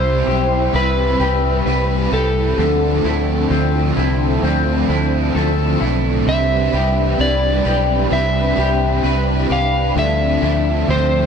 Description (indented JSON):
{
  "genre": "dream pop",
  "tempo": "65 BPM",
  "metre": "4/4",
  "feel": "straight",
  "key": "C major",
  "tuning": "A4 = 440 Hz",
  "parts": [
    { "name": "electric slide guitar", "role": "melody", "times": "0.0-11.3 s", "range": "A4 to F5", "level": "-20 LUFS", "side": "right 1 dB", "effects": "tape echo" },
    { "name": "crunchy overdriven guitar", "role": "accompaniment", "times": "0.0-11.3 s", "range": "D3 to B4", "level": "-22 LUFS", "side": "right 2 dB", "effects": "tremolo, ensemble chorus" },
    { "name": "warm analog pad", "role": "sustained chords", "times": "0.0-11.3 s", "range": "D3 to B4", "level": "-22 LUFS", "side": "left 2 dB", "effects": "chorus" },
    { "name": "electric guitar through a small old amp", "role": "arpeggios", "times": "0.0-11.3 s", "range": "D3 to B4", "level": "-23 LUFS", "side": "left 4 dB", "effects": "lush chorus, tape echo" },
    { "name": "picked electric bass", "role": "bass", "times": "0.0-11.3 s", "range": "B1 to D2", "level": "-19 LUFS", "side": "equal", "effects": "none" }
  ],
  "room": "light reverb, digital ambience",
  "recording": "dark, warm production",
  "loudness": "-14 LUFS",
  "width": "side -6 dB against mid",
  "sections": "0.0-11.3 A section",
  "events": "none",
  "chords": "0.0 Cmaj7; 2.6 Dm9; 6.3 Cmaj7; 10.0 Dm9",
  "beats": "0.73 1.66 | 2.58 3.50 4.43 5.35 | 6.27 7.20 8.12 9.04 | 9.96 10.89"
}